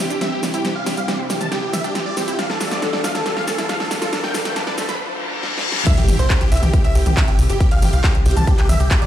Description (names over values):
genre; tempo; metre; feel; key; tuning
uplifting trance; 138 BPM; 4/4; straight; C major; A4 = 440 Hz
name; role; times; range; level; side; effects
big supersaw lead; melody; 0.0-9.1 s; G4 to B5; -24 LUFS; right 1 dB; phaser, sidechain pumping, low-pass filter, dub echo
lush unison pad; sustained chords; 0.0-9.1 s; C2 to G4; -30 LUFS; equal; chorus, sidechain pumping
big-room dance drum kit; drums; 0.0-9.1 s; crash cymbal, handclaps, hi-hat, shaker, snare drum, toms; -24 LUFS; equal; none
riser, reverse cymbal and impact; sound effects; 0.1-7.6 s; none; -27 LUFS; left 1 dB; none
wide unison pluck; arpeggios; 0.1-4.8 s; G3 to D5; -29 LUFS; right 2 dB; sidechain pumping, dub echo
warm baby grand piano; second line; 5.9-9.1 s; G4 to A5; -28 LUFS; right 1 dB; sidechain pumping, dub echo
electronic kick drum; drums; 5.9-9.0 s; none; -16 LUFS; equal; none
tight sequencer bass; bass; 6.0-9.1 s; G1 to C2; -18 LUFS; equal; sidechain pumping
room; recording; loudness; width
light reverb; played on a big sound system in a bare room, stone room reverb, high-pass filter; -16 LUFS; side -11 dB against mid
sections
0.0-5.9 A section; 5.9-9.1 B section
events
build-up 0.0-5.9; drum fill 0.0-5.0, 5.4-5.9; filter sweep on synth pluck 0.0-5.9; filter sweep 0.0-5.9; reverse cymbal 5.0-5.9; drop 5.9-9.1; impact 5.9-7.6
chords
0.0 C; 2.4 Dm; 5.9 C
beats
0.21 | 0.65 1.08 1.52 1.95 | 2.39 2.82 3.26 3.69 | 4.13 4.56 5.00 5.43 | 5.87 6.30 6.74 7.17 | 7.61 8.04 8.47 8.91